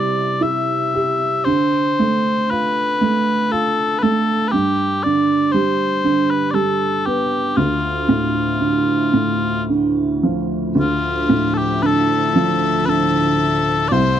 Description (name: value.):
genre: celtic folk, Celtic slow air.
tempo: 58 BPM.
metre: 3/4.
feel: uneven beats, rubato.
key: D dorian.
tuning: A4 = 440 Hz.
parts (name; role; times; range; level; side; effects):
mellow small bagpipes; melody; 0.0-14.2 s; F4 to E5; -19 LUFS; left 3 dB; none.
dark upright piano; accompaniment; 0.0-14.2 s; C2 to G4; -18 LUFS; right 2 dB; none.
rich studio string section; sustained chords; 10.8-14.2 s; C3 to E5; -24 LUFS; left 2 dB; none.
room: small room ambience.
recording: dry, close 1970s-style studio recording.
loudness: -15 LUFS.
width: side -10 dB against mid.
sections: 0.0-10.8 A section; 10.8-14.2 B section.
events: none.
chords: 0.0 C; 1.5 Dm7; 4.5 G; 7.6 Dm; 10.8 Dmadd9.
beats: 0.42 | 1.47 2.50 3.52 | 4.53 5.54 6.55 | 7.57 8.61 9.69 | 10.76 11.82 12.86 | 13.91.